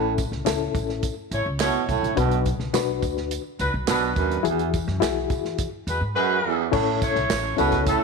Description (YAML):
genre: uptempo 1960s-style soul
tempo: 105 BPM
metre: 4/4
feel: straight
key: A major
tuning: A4 = 442 Hz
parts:
  - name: reed electric piano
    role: accompaniment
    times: 0.0-8.0 s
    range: A2 to C#5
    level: -25 LUFS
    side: left 11 dB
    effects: tremolo
  - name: breathy baritone saxophone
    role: riff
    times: 0.0-8.0 s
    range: E2 to B2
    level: -26 LUFS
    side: right 14 dB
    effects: none
  - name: upright bass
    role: bass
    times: 0.0-7.9 s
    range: A1 to E3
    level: -28 LUFS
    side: equal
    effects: none
  - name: warm soul drum kit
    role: drums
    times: 0.2-8.0 s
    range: crash cymbal, hi-hat, kick drum, snare drum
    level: -29 LUFS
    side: right 3 dB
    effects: none
  - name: tambourine and handclaps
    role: percussion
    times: 0.2-8.0 s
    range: none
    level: -37 LUFS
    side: right 12 dB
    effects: none
  - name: warm horn section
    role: second line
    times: 1.3-8.0 s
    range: E3 to C#5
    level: -26 LUFS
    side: left 1 dB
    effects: none
room: light reverb, studio reverb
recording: 1960s-style stereo with parts hard left and right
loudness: -21 LUFS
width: side -4 dB against mid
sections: 0.0-6.7 A section; 6.7-8.0 B section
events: none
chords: 0.0 A; 2.2 Bm; 4.5 Eadd9; 6.7 A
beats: 0.47 1.04 1.60 | 2.17 2.74 3.31 3.88 | 4.45 5.02 5.59 6.16 | 6.73 7.30 7.86